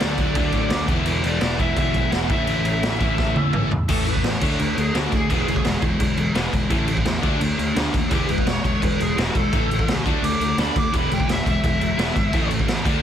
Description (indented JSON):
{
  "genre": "punk rock",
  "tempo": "170 BPM",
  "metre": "4/4",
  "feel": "straight",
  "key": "E mixolydian",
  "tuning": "A4 = 440 Hz",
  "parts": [
    { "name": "dark smooth lead guitar", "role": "melody", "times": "0.0-5.8, 8.1-12.5 s", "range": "F#4 to D6", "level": "-27 LUFS", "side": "equal", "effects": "overdrive, tape echo" },
    { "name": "crunchy overdriven guitar", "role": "riff", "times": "0.0-13.0 s", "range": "A2 to E4", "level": "-27 LUFS", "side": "left 12 dB", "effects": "none" },
    { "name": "crunchy overdriven guitar", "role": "riff", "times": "0.0-13.0 s", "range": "A2 to E4", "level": "-29 LUFS", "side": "right 12 dB", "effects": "none" },
    { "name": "distorted electric guitar", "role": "riff", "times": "0.0-13.0 s", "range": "E2 to D4", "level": "-30 LUFS", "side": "equal", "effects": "distortion" },
    { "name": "picked electric bass", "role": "bass", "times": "0.0-13.0 s", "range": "E1 to A2", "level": "-27 LUFS", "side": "equal", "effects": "none" },
    { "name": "raw garage drum kit", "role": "drums", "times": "0.0-12.9 s", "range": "crash cymbal, kick drum, snare drum, toms", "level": "-22 LUFS", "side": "equal", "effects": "none" }
  ],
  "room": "light reverb",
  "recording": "dense, heavily limited modern master",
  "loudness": "-18 LUFS",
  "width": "side -9 dB against mid",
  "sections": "0.0-3.9 A section; 3.9-13.0 B section",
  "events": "drum fill 3.2-3.9; lead electric guitar solo 3.9-13.0",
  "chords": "0.0 D; 0.9 E; 2.3 A; 3.9 A5; 4.4 D5; 5.3 E; 6.7 A5; 7.2 D5; 8.1 E; 9.5 A; 10.0 D5; 10.9 E; 12.3 A5"
}